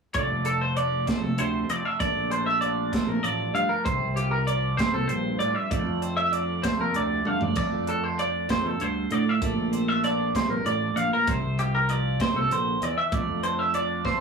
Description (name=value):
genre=math rock and midwest emo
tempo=65 BPM (dotted quarters)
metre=6/8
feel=straight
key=F major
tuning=A4 = 440 Hz
part: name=twangy electric guitar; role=accompaniment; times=0.1-14.2 s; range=F2 to F4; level=-31 LUFS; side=right 5 dB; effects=phaser
part: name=twelve-string electric guitar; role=arpeggios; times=0.1-14.2 s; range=G4 to F5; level=-26 LUFS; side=equal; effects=none
part: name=modern bright fingered electric bass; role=bass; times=0.1-14.0 s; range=F1 to D3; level=-30 LUFS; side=left 1 dB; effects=none
part: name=crisp fusion drum kit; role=drums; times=0.1-14.2 s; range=hi-hat, kick drum, snare drum, splash cymbal, toms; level=-30 LUFS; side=right 1 dB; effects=none
room=moderate small room reverb, RT60 0.5 s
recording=rough rehearsal-room recording, small room ambience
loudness=-23 LUFS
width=side -5 dB against mid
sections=0.1-14.2 A section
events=drum fill 7.3-7.6, 14.0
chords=0.1 F6; 2.0 Bbmaj7; 3.9 C7sus4; 5.7 F6; 9.4 Bbmaj7; 11.3 C7sus4; 13.1 F6